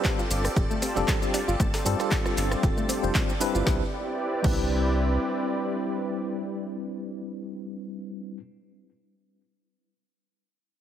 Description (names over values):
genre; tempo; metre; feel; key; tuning
deep house; 116 BPM; 4/4; swing 55% on 16ths; C major; A4 = 440 Hz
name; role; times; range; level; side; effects
warm analog pad; sustained chords; 0.0-7.6 s; C4 to D5; -32 LUFS; right 1 dB; chorus, vintage 12-bit sampler grit, sidechain pumping
soft round pluck; arpeggios; 0.0-4.6 s; A3 to A4; -35 LUFS; left 3 dB; chorus, sidechain pumping, tape echo
tine electric piano; stabs; 0.0-8.4 s; G3 to C5; -30 LUFS; left 1 dB; overdrive, medium stereo tremolo, sidechain pumping, tape echo
breakbeat sampler-style drum kit; drums; 0.0-3.7 s; hi-hat, snare drum; -38 LUFS; right 1 dB; none
deep house drum kit; drums; 0.0-4.6 s; crash cymbal, handclaps, hi-hat, rim click, shaker, snare drum; -32 LUFS; equal; none
electronic kick drum; drums; 0.0-4.6 s; none; -26 LUFS; equal; none
string machine, violins; texture; 0.0-3.7 s; A4 to A5; -40 LUFS; equal; ensemble chorus
round analog bass; bass; 0.3-5.2 s; D1 to G2; -27 LUFS; equal; tube saturation, sidechain pumping
room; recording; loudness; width
light reverb, digital ambience; heavily compressed radio sound, multiband compression; -24 LUFS; side -10 dB against mid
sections
0.0-3.7 A section; 3.7-7.8 B section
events
drop 0.0-3.7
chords
0.0 G9sus4; 3.7 Cmaj9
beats
0.05 0.56 1.08 | 1.60 2.12 2.63 3.15 | 3.67 4.18 4.70 5.22 | 5.74 6.25 6.77 7.29